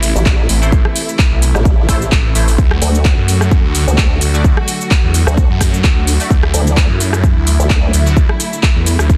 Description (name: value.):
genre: bass house.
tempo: 129 BPM.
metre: 4/4.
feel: swing 55% on 16ths.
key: unclear.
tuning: A4 = 441 Hz.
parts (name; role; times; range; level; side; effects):
rich studio string section; sustained chords; 0.0-9.2 s; C3 to F#4; -25 LUFS; equal; sidechain pumping.
phased detuned saw bass; bass; 0.0-9.2 s; A1 to F#2; -16 LUFS; equal; phaser, tube saturation, sidechain pumping.
house drum kit; drums; 0.0-9.2 s; handclaps, hi-hat, rim click, shaker; -21 LUFS; equal; small room reverb.
formant-sweep wobble bass; bass; 0.2-7.9 s; A1 to D2; -16 LUFS; equal; chorus, tube saturation, sidechain pumping.
electronic kick drum; drums; 0.3-9.2 s; none; -14 LUFS; equal; small room reverb.
band-passed chord stab; stabs; 0.6-8.2 s; A3 to D5; -28 LUFS; equal; phaser, ensemble chorus, sidechain pumping, tape echo.
room: digital ambience.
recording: dense, heavily limited modern master.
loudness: -13 LUFS.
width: mono.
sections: 0.0-9.2 A section.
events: none.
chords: 0.0 Am; 2.6 D.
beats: 0.26 | 0.72 1.19 1.65 2.12 | 2.58 3.05 3.52 3.98 | 4.45 4.91 5.38 5.84 | 6.30 6.77 7.24 7.70 | 8.17 8.63 9.10.